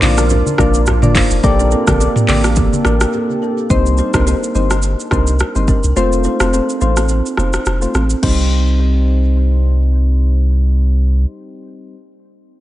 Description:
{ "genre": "afrobeats", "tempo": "106 BPM", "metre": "4/4", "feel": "swing 55% on 16ths", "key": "C dorian", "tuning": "A4 = 440 Hz", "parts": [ { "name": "soft electric-piano-like synth keys", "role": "accompaniment", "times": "0.0-12.0 s", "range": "G3 to D5", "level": "-20 LUFS", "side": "left 4 dB", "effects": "chorus, low-pass filter, tape echo" }, { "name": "deep dark ambient pad", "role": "sustained chords", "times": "0.0-3.7 s", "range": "Bb3 to A4", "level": "-25 LUFS", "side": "equal", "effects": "chorus, built-in reverb" }, { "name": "kalimba", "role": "riff", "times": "0.0-9.9 s", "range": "Bb3 to C5", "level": "-21 LUFS", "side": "right 3 dB", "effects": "low-pass filter, tape echo" }, { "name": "punchy sub bass", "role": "bass", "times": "0.0-11.3 s", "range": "F1 to C2", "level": "-14 LUFS", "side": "equal", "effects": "none" }, { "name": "afro-pop drum kit", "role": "drums", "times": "0.0-8.4 s", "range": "crash cymbal, handclaps, hi-hat, kick drum, rim click, shaker, toms", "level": "-17 LUFS", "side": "equal", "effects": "none" }, { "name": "congas", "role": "percussion", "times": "0.0-2.8 s", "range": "none", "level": "-23 LUFS", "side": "left 1 dB", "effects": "tape echo" } ], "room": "digital ambience", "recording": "echo-heavy mix, nothing above 10.3 kHz", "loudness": "-12 LUFS", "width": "side -15 dB against mid", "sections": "0.0-3.7 A section; 3.7-8.2 B section; 8.2-10.5 C section", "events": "break 3.1-3.7; filter sweep 3.7-8.2", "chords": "0.0 Bb; 1.4 Gmadd9; 3.7 Cm; 6.0 F; 8.2 Cm" }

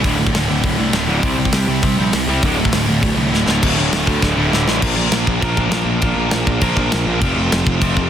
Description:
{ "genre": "punk rock", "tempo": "200 BPM", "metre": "4/4", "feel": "straight", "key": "D minor", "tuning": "A4 = 441 Hz", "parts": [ { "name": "distorted electric guitar", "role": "riff", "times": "0.0-4.8 s", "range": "D2 to C4", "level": "-20 LUFS", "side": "equal", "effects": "overdrive" }, { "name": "sludgy distorted guitar", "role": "riff", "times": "0.0-8.1 s", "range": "D2 to Bb4", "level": "-19 LUFS", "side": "right 1 dB", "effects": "overdrive" }, { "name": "fuzz picked electric bass", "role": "bass", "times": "0.0-8.1 s", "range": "D1 to D2", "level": "-21 LUFS", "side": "equal", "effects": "overdrive" }, { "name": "tight metal drum kit", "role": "drums", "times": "0.0-8.0 s", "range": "crash cymbal, hi-hat, kick drum, snare drum", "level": "-20 LUFS", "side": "equal", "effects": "soft clipping on kick" } ], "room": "little or no reverb", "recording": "dense, heavily limited modern master", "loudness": "-14 LUFS", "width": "side -9 dB against mid", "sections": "0.0-3.6 A section; 3.6-4.8 B section; 4.8-8.1 C section", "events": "drum fill 3.3, 4.2-4.8", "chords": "0.0 D5; 1.2 C5; 2.4 D5; 4.8 Bb; 7.2 F" }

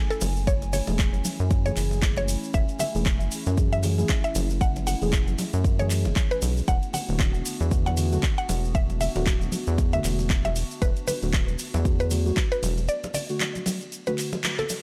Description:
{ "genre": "deep house", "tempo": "116 BPM", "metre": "4/4", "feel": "swing 58% on 16ths", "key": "unclear", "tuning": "A4 = 440 Hz", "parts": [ { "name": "warbly tape-like pad", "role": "sustained chords", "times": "0.0-14.8 s", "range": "A3 to G#5", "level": "-40 LUFS", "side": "equal", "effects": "chorus, built-in reverb, sidechain pumping" }, { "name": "mallet-like synth pluck", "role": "melody", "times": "0.1-14.8 s", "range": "A4 to F#5", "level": "-33 LUFS", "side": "equal", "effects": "chorus, vintage 12-bit sampler grit, analog delay" }, { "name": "deep house drum kit", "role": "drums", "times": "0.1-14.8 s", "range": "handclaps, hi-hat, ride cymbal", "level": "-35 LUFS", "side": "equal", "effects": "small room reverb" }, { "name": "tube shaker", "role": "percussion", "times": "0.1-14.8 s", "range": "none", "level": "-39 LUFS", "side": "equal", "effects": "none" }, { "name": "rubbery square bass", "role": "bass", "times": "0.2-12.9 s", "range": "D1 to F#2", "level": "-28 LUFS", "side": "equal", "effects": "tube saturation, sidechain pumping" }, { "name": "congas", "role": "percussion", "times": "0.2-14.8 s", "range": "none", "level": "-37 LUFS", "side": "equal", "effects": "sidechain pumping on perc" }, { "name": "electronic kick drum", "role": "drums", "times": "0.5-12.5 s", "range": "none", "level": "-26 LUFS", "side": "equal", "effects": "small room reverb" }, { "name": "deep mellow chord stab", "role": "stabs", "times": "0.9-14.8 s", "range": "D3 to G#4", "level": "-35 LUFS", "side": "equal", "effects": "chorus, cassette tape, sidechain pumping, analog delay" } ], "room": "digital ambience", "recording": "dry, gritty hardware recording, transformer saturation", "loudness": "-25 LUFS", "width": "mono", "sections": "0.0-14.8 A section", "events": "break 12.9-14.8; band accent 14.4", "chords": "0.0 F#m9; 6.7 E9sus4" }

